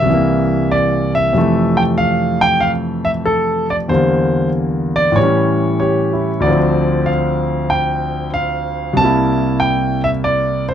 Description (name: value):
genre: solo jazz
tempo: 94 BPM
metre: 4/4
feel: swing 68% on 8ths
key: F major, D minor from 6.4 s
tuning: A4 = 440 Hz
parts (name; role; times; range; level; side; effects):
- clear concert grand piano; solo; 0.0-10.7 s; C2 to A5; -13 LUFS; equal; none
room: little or no reverb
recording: close, detailed microphones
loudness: -13 LUFS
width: side -9 dB against mid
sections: 0.0-6.4 A section; 6.4-10.7 B section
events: none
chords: 0.1 C7; 1.3 Fmaj7; 3.9 Em7b5; 5.2 A7; 6.4 Dm7; 9.0 C7